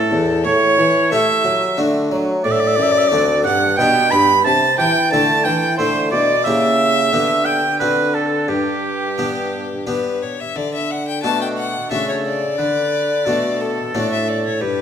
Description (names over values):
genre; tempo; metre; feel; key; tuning
classical, baroque-style sonata movement with continuo; 89 BPM; 3/4; straight; G major, D major from 10.6 s; A4 = 440 Hz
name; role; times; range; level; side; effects
rich violin; melody; 0.0-14.8 s; G4 to B5; -21 LUFS; left 5 dB; none
warm oboe; second line; 0.0-14.8 s; F#4 to B5; -18 LUFS; right 5 dB; none
harpsichord; accompaniment; 0.0-14.8 s; D2 to G4; -22 LUFS; left 2 dB; none
mellow bassoon; bass; 0.0-14.8 s; D2 to A3; -22 LUFS; right 1 dB; none
room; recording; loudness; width
wet recital hall reverb, RT60 1.4 s; none; -15 LUFS; side -8 dB against mid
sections
0.0-10.6 A section; 10.6-14.8 A section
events
none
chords
0.5 A7; 1.8 D; 2.4 D7; 3.8 G/B; 4.5 Am/C; 6.5 C#dim7; 7.1 G/D; 7.8 D7; 8.5 G; 10.6 D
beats
| 0.45 1.12 1.78 | 2.45 3.11 3.78 | 4.45 5.12 5.79 | 6.45 7.12 7.80 | 8.49 9.18 9.87 | 10.56 11.24 11.91 | 12.59 13.26 13.94 | 14.61